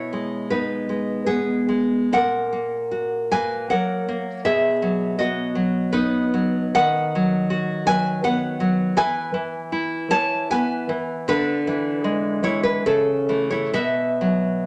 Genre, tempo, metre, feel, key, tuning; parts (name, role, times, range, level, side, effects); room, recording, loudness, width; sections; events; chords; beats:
romantic piece for solo classical guitar; 63-84 BPM; 3/4; rubato; B major, E major from 6.8 s; A4 = 438 Hz
nylon-string guitar; solo; 0.0-14.7 s; A#2 to A5; -22 LUFS; equal
moderate large studio reverb, RT60 1.1 s; -22 LUFS; mono
0.0-14.7 A section
0.0 G#m/B; 2.1 F#/A#; 4.4 B; 6.8 B/D#; 9.0 E; 11.3 E7/D; 12.8 A/C#; 13.7 B5
0.50 1.27 | 2.12 2.91 3.69 | 4.44 5.18 5.92 | 6.76 7.52 8.24 | 8.97 9.73 10.50 | 11.29 12.05 12.84 | 13.74